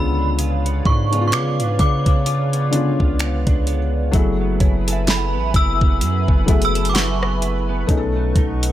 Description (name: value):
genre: contemporary R&B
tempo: 64 BPM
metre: 4/4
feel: swing 58% on 16ths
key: F# minor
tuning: A4 = 441 Hz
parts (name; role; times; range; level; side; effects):
- synth chime; melody; 0.0-7.7 s; B5 to E6; -24 LUFS; right 1 dB; ensemble chorus, phaser, digital delay
- felt-muted upright piano; accompaniment; 0.0-8.7 s; D3 to A4; -25 LUFS; left 6 dB; none
- hollow soft pad; sustained chords; 0.0-8.7 s; B4 to C#6; -29 LUFS; equal; chorus, sidechain pumping
- direct-recorded clean electric guitar; arpeggios; 0.0-8.7 s; B2 to C#5; -28 LUFS; right 8 dB; ensemble chorus
- long sustained 808-style bass; bass; 0.0-8.7 s; F#1 to C#3; -21 LUFS; equal; none
- smooth R&B drum kit; drums; 0.4-8.7 s; finger snaps, hi-hat, kick drum, rim click, snare drum; -18 LUFS; equal; none
- mallet-like synth pluck; texture; 4.6-8.3 s; C#5 to F#5; -34 LUFS; left 2 dB; chorus, phaser, digital delay
room: little or no reverb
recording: none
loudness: -16 LUFS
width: side -13 dB against mid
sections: 0.0-4.1 A section; 4.1-8.7 B section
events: none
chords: 0.0 C#7b9; 4.1 F#m11; 7.9 B9